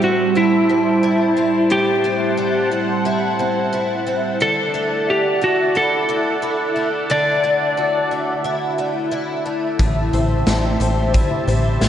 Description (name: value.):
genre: dream pop.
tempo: 89 BPM.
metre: 4/4.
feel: straight.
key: A dorian.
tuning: A4 = 440 Hz.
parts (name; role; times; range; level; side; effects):
electric slide guitar; melody; 0.0-8.1 s; E4 to D5; -18 LUFS; equal; tape echo.
phased analog pad; sustained chords; 0.0-11.9 s; G3 to A5; -22 LUFS; right 1 dB; phaser, chorus.
picked twelve-string acoustic guitar; arpeggios; 0.0-11.9 s; A2 to E4; -22 LUFS; left 2 dB; ensemble chorus, slapback echo, tape echo.
plucky analog bass; bass; 9.8-11.9 s; A1; -19 LUFS; equal; none.
raw garage drum kit; drums; 9.8-11.9 s; hi-hat, kick drum, snare drum; -20 LUFS; equal; none.
room: wet lush hall reverb, RT60 2.6 s.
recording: big arena sound, nothing above 10.6 kHz.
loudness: -16 LUFS.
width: side -10 dB against mid.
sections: 0.0-11.9 A section.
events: none.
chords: 0.0 Am7; 4.4 Dadd9; 9.8 Am7.